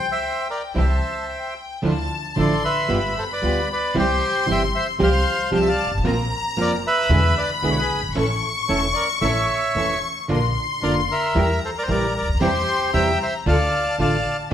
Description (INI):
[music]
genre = tango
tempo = 114 BPM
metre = 4/4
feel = rubato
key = D minor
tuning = A4 = 441 Hz
[part]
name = bandoneon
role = melody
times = 0.0-14.4 s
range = G4 to G5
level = -22 LUFS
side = equal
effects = none
[part]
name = clear studio violin section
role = second line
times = 0.0-14.5 s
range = G5 to C#6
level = -26 LUFS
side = left 4 dB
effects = none
[part]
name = nylon-string guitar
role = accompaniment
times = 0.7-14.5 s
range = B2 to G4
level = -24 LUFS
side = right 2 dB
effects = none
[part]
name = dark studio string section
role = stabs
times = 0.8-14.5 s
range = B3 to C5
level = -31 LUFS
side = right 1 dB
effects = none
[part]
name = upright bass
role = bass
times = 0.8-14.5 s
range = E1 to E2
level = -24 LUFS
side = equal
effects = none
[sound]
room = moderate large studio reverb, RT60 1.1 s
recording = band playing live in one room, vinyl crackle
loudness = -18 LUFS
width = side -10 dB against mid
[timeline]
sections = 0.0-1.8 A section; 1.8-14.5 B section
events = none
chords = 0.0 C5; 0.8 C; 1.8 Dmadd9; 2.9 G7; 4.0 C; 5.0 Fsus2/C; 6.0 Bbsus2; 7.1 E7; 8.2 A; 10.3 Bb; 11.4 Edim; 12.4 C/E; 13.5 Dm